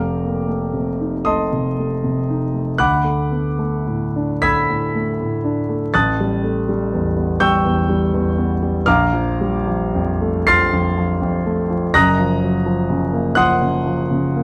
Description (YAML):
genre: classical, impressionist solo piano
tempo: 35-42 BPM (dotted quarters)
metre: 6/8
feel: rubato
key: unclear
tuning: A4 = 440 Hz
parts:
  - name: warm concert grand piano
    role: solo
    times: 0.0-14.4 s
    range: F1 to C7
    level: -18 LUFS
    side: equal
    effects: none
room: moderate recital hall reverb, RT60 1.3 s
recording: close, detailed microphones, vinyl crackle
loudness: -19 LUFS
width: mono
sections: 0.0-14.4 A section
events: none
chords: 0.0 F7; 2.8 Dadd9; 5.9 A9; 8.9 Bbmaj9; 11.9 Gbmaj7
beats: 1.24 | 2.77 4.43 | 5.93 7.38 | 8.86 10.46 | 11.93 13.37